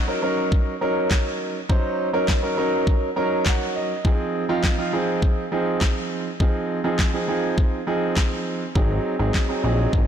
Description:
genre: dance-pop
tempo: 102 BPM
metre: 4/4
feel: straight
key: Eb dorian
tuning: A4 = 440 Hz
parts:
  - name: clear grand piano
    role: accompaniment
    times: 0.0-10.1 s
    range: F3 to Bb5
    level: -23 LUFS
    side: right 2 dB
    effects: sidechain pumping
  - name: pop drum kit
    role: drums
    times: 0.5-10.1 s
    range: handclaps, kick drum, snare drum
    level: -22 LUFS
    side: equal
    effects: none
  - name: fat analog bass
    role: bass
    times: 8.8-10.1 s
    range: Ab1 to Bb1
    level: -22 LUFS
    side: left 1 dB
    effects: sidechain pumping
room: light reverb, digital ambience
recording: blown-out, overdriven recording, overdrive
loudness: -20 LUFS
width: side -9 dB against mid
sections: 0.0-10.1 A section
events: grand piano fill 2.9-4.0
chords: 0.0 Ebm7; 4.0 Fm7; 8.8 Ab7

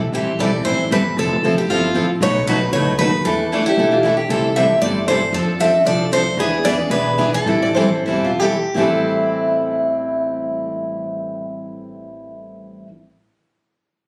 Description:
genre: acoustic string swing (jazz manouche)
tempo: 161-231 BPM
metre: 4/4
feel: swing 55% on 8ths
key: A minor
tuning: A4 = 440 Hz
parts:
  - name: upright bass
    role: bass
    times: 0.0-12.8 s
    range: E1 to F2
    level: -27 LUFS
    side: equal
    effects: none
  - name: picked steel-string acoustic guitar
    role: melody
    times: 0.1-8.4 s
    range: E4 to E5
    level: -21 LUFS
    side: equal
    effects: none
  - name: picked steel-string acoustic guitar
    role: accompaniment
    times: 0.1-12.9 s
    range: A2 to A4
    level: -27 LUFS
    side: equal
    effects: none
  - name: picked steel-string acoustic guitar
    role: accompaniment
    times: 0.1-12.9 s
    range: A2 to B4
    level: -23 LUFS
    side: equal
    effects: none
  - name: picked steel-string acoustic guitar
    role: second line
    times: 3.7-4.8, 7.6-12.8 s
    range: E4 to D5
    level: -25 LUFS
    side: equal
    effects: none
room: light reverb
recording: recorded on a phone in the room, club reverb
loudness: -18 LUFS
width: mono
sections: 0.1-8.8 A section; 8.8-11.7 B section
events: slowing down 6.4-8.8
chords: 0.1 Am7; 1.2 Fmaj7; 2.2 B7; 3.3 E7sus4; 4.3 C6; 5.3 F6; 6.4 E7; 7.5 Am7

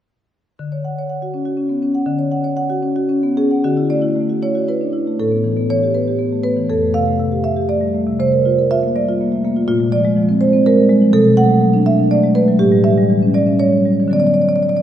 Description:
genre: classical, contemporary piece for solo marimba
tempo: 107-126 BPM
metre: 3/4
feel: rubato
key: unclear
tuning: A4 = 443 Hz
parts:
  - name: marimba with medium mallets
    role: solo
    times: 0.6-14.8 s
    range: F2 to F#5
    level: -13 LUFS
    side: equal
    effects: none
room: wet church reverb, RT60 3.6 s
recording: minimal, uncompressed stereo recording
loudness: -13 LUFS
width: side -10 dB against mid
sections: 0.6-3.7 A section; 3.7-14.8 B section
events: none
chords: 0.6 Dmaj7; 3.7 Dadd9; 5.2 Asus2; 6.7 Fadd9; 8.2 C9sus4; 9.7 Bb9; 11.1 Bm7; 12.6 A; 14.1 D6

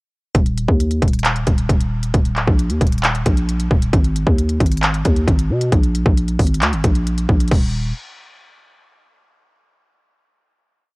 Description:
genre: hip hop, trap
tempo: 134 BPM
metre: 4/4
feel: half-time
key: unclear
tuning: A4 = 439 Hz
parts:
  - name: growling 808-style bass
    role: bass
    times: 0.3-7.9 s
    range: D1 to Cb3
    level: -18 LUFS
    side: equal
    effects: none
  - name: trap drum kit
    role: drums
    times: 0.3-7.6 s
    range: crash cymbal, handclaps, hi-hat, kick drum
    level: -17 LUFS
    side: equal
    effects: none
room: little or no reverb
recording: worn, warbling old tape, cassette tape, warbly pitch drift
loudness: -15 LUFS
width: side -26 dB against mid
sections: 0.3-7.5 hook; 7.5-9.3 final note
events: none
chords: none

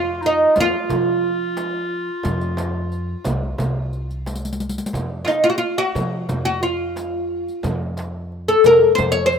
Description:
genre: Arabic maqam ensemble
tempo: 89 BPM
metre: 4/4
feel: straight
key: F maqam hijaz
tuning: A4 = 441 Hz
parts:
  - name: oud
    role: melody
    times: 0.0-9.4 s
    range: Eb4 to Db5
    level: -16 LUFS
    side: left 1 dB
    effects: none
  - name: warm clarinet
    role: second line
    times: 0.0-4.3 s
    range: Eb4 to F4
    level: -28 LUFS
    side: left 1 dB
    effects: none
  - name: upright bass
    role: bass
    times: 0.0-9.4 s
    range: C2 to F3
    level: -28 LUFS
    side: equal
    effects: none
  - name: riq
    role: percussion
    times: 0.2-9.4 s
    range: none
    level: -31 LUFS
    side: left 2 dB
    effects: none
  - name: frame drum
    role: percussion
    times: 0.6-9.1 s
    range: none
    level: -31 LUFS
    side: right 2 dB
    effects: none
  - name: darbuka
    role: percussion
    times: 0.7-9.4 s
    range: none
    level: -28 LUFS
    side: right 1 dB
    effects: none
room: small room ambience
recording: rough home demo mix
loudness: -18 LUFS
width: side -7 dB against mid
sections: 0.0-4.9 A section; 4.9-9.4 B section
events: drum fill 4.3-4.9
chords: none

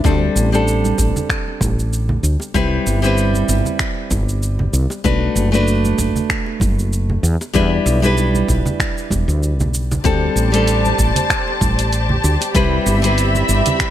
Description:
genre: sunset chillout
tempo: 96 BPM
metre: 4/4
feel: swing 56% on 16ths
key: unclear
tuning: A4 = 442 Hz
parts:
  - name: nylon-string guitar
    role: accompaniment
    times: 0.0-13.9 s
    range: G3 to B4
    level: -20 LUFS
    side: moving between left 6 dB and right 5 dB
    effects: auto-pan, digital delay
  - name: woody fretless electric bass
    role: bass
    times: 0.0-13.6 s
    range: E1 to E2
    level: -17 LUFS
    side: equal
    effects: none
  - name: electronic kick drum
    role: drums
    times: 0.0-13.9 s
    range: none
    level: -21 LUFS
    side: equal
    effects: overdrive
  - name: congas and bongos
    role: percussion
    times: 0.0-13.8 s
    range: none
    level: -25 LUFS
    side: right 2 dB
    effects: none
  - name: smooth R&B drum kit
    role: drums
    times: 0.1-13.9 s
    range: finger snaps, hi-hat, shaker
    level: -24 LUFS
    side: right 1 dB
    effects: none
  - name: dark studio string section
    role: sustained chords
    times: 10.0-13.9 s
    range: C4 to B5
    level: -20 LUFS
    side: left 2 dB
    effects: none
room: light reverb, studio reverb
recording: faint mains hum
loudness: -14 LUFS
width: side -12 dB against mid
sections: 0.0-13.9 A section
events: none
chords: 0.1 D7sus4; 2.5 Cmaj7; 5.0 Bm7; 7.2 Em7; 10.1 D7sus4; 12.6 Cmaj7

